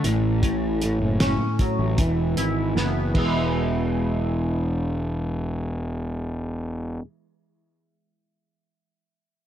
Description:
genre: psychedelic rock.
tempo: 77 BPM.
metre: 4/4.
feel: straight.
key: E major.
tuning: A4 = 439 Hz.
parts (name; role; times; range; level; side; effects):
twangy electric guitar; riff; 0.0-7.0 s; A2 to E4; -25 LUFS; equal; flanger, double-tracked left and right, low-pass filter.
fuzz picked electric bass; bass; 0.0-7.0 s; E1 to A1; -25 LUFS; equal; overdrive.
cloth-damped thuddy drum kit; drums; 0.0-3.3 s; crash cymbal, hi-hat, kick drum, snare drum; -26 LUFS; equal; none.
room: little or no reverb.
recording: none.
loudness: -22 LUFS.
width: side -10 dB against mid.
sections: 0.0-3.5 A section; 3.5-6.7 B section.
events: drum fill 2.8-3.5.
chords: 0.0 A6; 2.0 E.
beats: | 0.43 1.21 1.99 2.77 | 3.54 4.32 5.10 5.88.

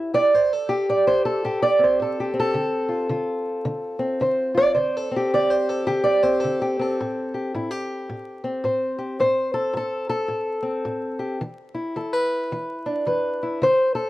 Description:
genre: acoustic country blues, solo or duo.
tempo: 108 BPM.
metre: 4/4.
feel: swing 61% on 8ths.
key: A minor.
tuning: A4 = 440 Hz.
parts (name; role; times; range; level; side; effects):
fingerpicked old ladder-braced acoustic guitar; solo; 0.0-14.1 s; A2 to E5; -20 LUFS; equal; none.
room: light reverb, small room ambience.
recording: dry, close 1970s-style studio recording, vinyl crackle.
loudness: -20 LUFS.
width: side -16 dB against mid.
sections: 0.0-14.1 A section.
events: none.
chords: 0.0 Am7; 2.5 Dm7; 7.0 Am7; 11.4 E5.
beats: | 0.34 0.89 1.44 1.99 | 2.54 3.10 3.65 4.20 | 4.76 5.31 5.86 6.42 | 6.97 7.52 8.08 8.63 | 9.18 9.74 10.29 10.84 | 11.40 11.95 12.50 13.05 | 13.61.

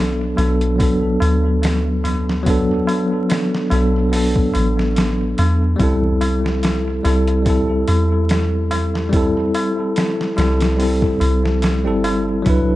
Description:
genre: trip hop.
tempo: 72 BPM.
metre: 4/4.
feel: swing 55% on 16ths.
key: A dorian.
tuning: A4 = 440 Hz.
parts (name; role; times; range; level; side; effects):
bell-like tine electric piano; accompaniment; 0.0-12.8 s; F#3 to B4; -18 LUFS; equal; medium stereo tremolo, harmonic tremolo, tape echo.
soft 808-style bass; bass; 0.0-12.8 s; G1 to E2; -19 LUFS; equal; none.
tabla; percussion; 0.2-12.8 s; none; -29 LUFS; left 2 dB; analog delay.
trip hop sampler-style drum kit; drums; 0.4-12.7 s; hi-hat, kick drum, snare drum; -22 LUFS; equal; overdrive, small room reverb, analog delay.
room: little or no reverb.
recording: echo-heavy mix, vinyl crackle, nothing above 11.0 kHz.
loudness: -15 LUFS.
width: side -16 dB against mid.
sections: 0.0-12.8 A section.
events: none.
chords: 0.0 Bm7; 5.8 Am7/C.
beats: 0.79 1.63 | 2.46 3.29 4.13 4.96 | 5.79 6.63 7.46 8.29 | 9.13 9.96 10.79 11.63 | 12.46.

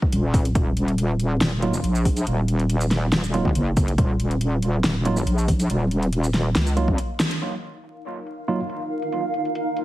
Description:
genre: deep dubstep.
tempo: 140 BPM.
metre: 4/4.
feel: half-time.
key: Eb minor.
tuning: A4 = 441 Hz.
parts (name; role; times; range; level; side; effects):
electronic kick drum; drums; 0.0-7.0 s; none; -22 LUFS; equal; overdrive, small room ambience.
wobble bass; bass; 0.1-7.0 s; Eb1 to Db2; -21 LUFS; equal; chorus.
deep house drum kit; drums; 0.1-9.8 s; hi-hat, shaker, snare drum; -25 LUFS; equal; overdrive, low-pass filter on perc, small room ambience, low-pass filter on snare, low-pass filter on hats.
tine electric piano; stabs; 1.6-8.6 s; Gb3 to F4; -28 LUFS; right 3 dB; auto-pan, dub echo.
granular cloud pad; sustained chords; 8.0-9.8 s; Eb4 to F5; -26 LUFS; right 1 dB; built-in reverb.
room: light reverb.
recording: heavily compressed radio sound, vinyl crackle.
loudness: -20 LUFS.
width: side -15 dB against mid.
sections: 0.0-7.4 A section; 7.4-9.8 B section.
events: break 7.0-7.4; drum fill 7.2; band accent 7.2; filter sweep on drum 7.4-9.8.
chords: 0.0 Eb5; 7.4 Ebsus2.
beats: 0.12 | 0.55 0.98 1.41 1.84 | 2.27 2.70 3.12 3.55 | 3.98 4.41 4.84 5.27 | 5.70 6.12 6.55 6.98 | 7.41 7.84 8.27 8.70 | 9.12 9.55.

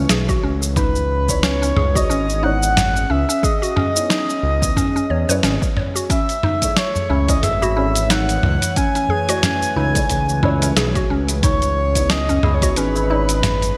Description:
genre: organic downtempo.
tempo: 90 BPM.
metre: 4/4.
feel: swing 57% on 16ths.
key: C# minor.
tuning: A4 = 442 Hz.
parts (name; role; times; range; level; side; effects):
breathy flute-like synth lead; melody; 0.0-13.8 s; B4 to G#5; -24 LUFS; equal; subtle chorus, delay.
felt-muted upright piano; accompaniment; 0.0-13.8 s; A3 to D#5; -31 LUFS; equal; analog chorus, sidechain pumping, delay.
warbly tape-like pad; sustained chords; 0.0-13.8 s; E3 to D#5; -32 LUFS; equal; chorus, built-in reverb, sidechain pumping.
mallet-like synth pluck; arpeggios; 0.0-13.3 s; C#4 to C#5; -26 LUFS; equal; chorus, delay.
smooth gliding synth bass; bass; 0.0-13.7 s; G#1 to F#2; -23 LUFS; equal; sidechain pumping.
dusty soul sampler-style drum kit; drums; 0.1-13.7 s; cabasa, hi-hat, snare drum, toms; -24 LUFS; equal; none.
electronic kick drum; drums; 0.3-12.7 s; none; -24 LUFS; equal; none.
tabla; percussion; 6.1-13.4 s; none; -30 LUFS; equal; none.
room: moderate lush hall reverb, RT60 1.8 s.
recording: bright 1980s-style digital production.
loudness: -18 LUFS.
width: mono.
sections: 0.0-13.8 A section.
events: none.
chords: 0.0 Amaj7; 0.8 C#m9; 6.1 Amaj7; 11.4 C#m9.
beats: 0.10 | 0.77 1.43 2.10 2.77 | 3.43 4.10 4.76 5.43 | 6.10 6.76 7.43 8.10 | 8.77 9.43 10.10 10.77 | 11.43 12.10 12.77 13.43.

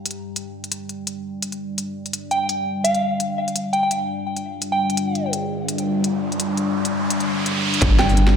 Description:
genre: half-time drum and bass.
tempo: 169 BPM.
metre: 4/4.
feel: swing 56% on 16ths, half-time.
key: unclear.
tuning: A4 = 440 Hz.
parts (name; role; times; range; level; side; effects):
deep dark ambient pad; sustained chords; 0.0-8.4 s; G3 to G5; -24 LUFS; left 2 dB; chorus, built-in reverb, sidechain pumping.
industrial drum kit; drums; 0.1-8.3 s; hi-hat, snare drum; -25 LUFS; left 1 dB; none.
soft synth bell; melody; 2.3-5.2, 8.0-8.2 s; F5 to G5; -23 LUFS; right 1 dB; chorus, vintage 12-bit sampler grit, ping-pong delay.
riser and impact; sound effects; 5.7-8.4 s; none; -24 LUFS; right 1 dB; none.
long sustained 808-style bass; bass; 7.8-8.4 s; G1; -17 LUFS; equal; none.
electronic kick drum; drums; 7.8-7.9 s; none; -21 LUFS; equal; none.
room: wet lush hall reverb, RT60 1.7 s.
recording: dreamy mix soaked in reverb.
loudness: -20 LUFS.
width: side -7 dB against mid.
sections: 0.0-7.8 A section.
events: riser 5.7-7.8; impact 7.8-8.4.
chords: 0.0 G5.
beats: 0.01 0.36 | 0.72 1.07 1.43 1.78 | 2.14 2.49 2.85 3.20 | 3.56 3.91 4.27 4.62 | 4.98 5.33 5.69 6.04 | 6.40 6.75 7.11 7.46 | 7.82 8.17.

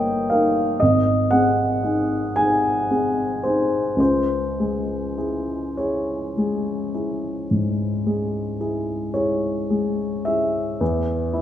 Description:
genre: classical, romantic nocturne for solo piano.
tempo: 33-42 BPM (dotted quarters).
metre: 12/8.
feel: rubato.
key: C# minor.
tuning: A4 = 439 Hz.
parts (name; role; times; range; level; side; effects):
warm upright piano; solo; 0.0-11.4 s; G1 to G#5; -19 LUFS; equal; none.
room: moderate scoring stage reverb, RT60 2.0 s.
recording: none.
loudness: -19 LUFS.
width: side -11 dB against mid.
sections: 0.0-10.8 A section.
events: none.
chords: 0.0 D#7/G; 0.8 G#7; 4.0 C#m; 10.8 N.C..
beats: 0.81 2.35 | 3.99 5.77 7.48 9.14 | 10.80.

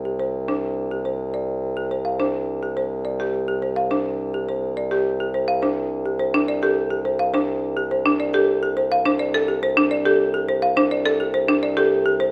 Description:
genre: classical, minimalist pattern music.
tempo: 105 BPM.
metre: 3/4.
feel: straight.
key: unclear.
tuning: A4 = 441 Hz.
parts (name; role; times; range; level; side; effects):
warm bassoon; bass; 0.0-12.3 s; C2; -28 LUFS; equal; none.
folk marimba with medium hard mallets; melody; 0.1-12.3 s; G4 to F5; -26 LUFS; equal; none.
buzzing marimba with hard mallets; arpeggios; 0.5-12.0 s; D4 to A4; -25 LUFS; equal; none.
room: light reverb.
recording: close, detailed microphones.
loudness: -22 LUFS.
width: mono.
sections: 0.0-12.3 A section.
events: none.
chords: 0.0 Csus2.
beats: 0.48 1.05 | 1.63 2.20 2.77 | 3.34 3.91 4.48 | 5.05 5.63 6.20 | 6.77 7.34 7.91 | 8.48 9.05 9.63 | 10.20 10.77 11.34 | 11.91.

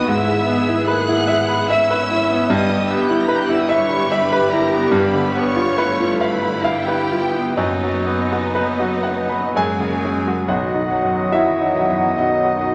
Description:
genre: classical, romantic movement for piano and orchestra.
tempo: 57-77 BPM.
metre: 3/4.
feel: rubato.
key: B major.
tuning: A4 = 440 Hz.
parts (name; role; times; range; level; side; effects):
clear grand piano; melody; 0.0-12.7 s; B1 to B5; -20 LUFS; equal; none.
rich symphonic violin section; melody; 0.0-12.7 s; D#5 to B6; -30 LUFS; equal; none.
warm symphonic violin section; second line; 0.0-12.7 s; D#4 to B5; -30 LUFS; equal; none.
rich symphonic viola section; accompaniment; 0.0-12.7 s; F#3 to G#4; -27 LUFS; equal; none.
rich symphonic cello section; bass; 0.0-12.7 s; F#2 to G#3; -32 LUFS; equal; none.
rich symphonic double bass section; bass; 0.0-12.7 s; F#1 to D#2; -34 LUFS; equal; none.
warm clarinet; second line; 9.5-12.7 s; D#4 to G#4; -33 LUFS; equal; none.
clear oboe; second line; 10.5-12.7 s; D#5; -29 LUFS; equal; none.
silver concert flute; second line; 10.5-12.7 s; F#5; -27 LUFS; equal; none.
clear bassoon; accompaniment; 10.5-12.7 s; F#3; -31 LUFS; equal; none.
clear trombone section; sustained chords; 10.5-12.7 s; D#3 to F#3; -30 LUFS; equal; none.
dark French horn section; sustained chords; 10.5-12.7 s; B3 to F#4; -26 LUFS; equal; none.
room: wet scoring stage reverb, RT60 1.8 s.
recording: none.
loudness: -18 LUFS.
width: mono.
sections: 0.0-10.5 A section; 10.5-12.7 B section.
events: none.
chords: 0.1 E/G#; 2.5 Em/G; 4.9 G7; 7.6 B/F#; 9.5 F#; 10.5 B.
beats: | 0.10 0.89 1.70 | 2.52 3.31 4.12 | 4.94 5.77 6.65 | 7.58 8.53 9.55 | 10.48 11.32 12.17.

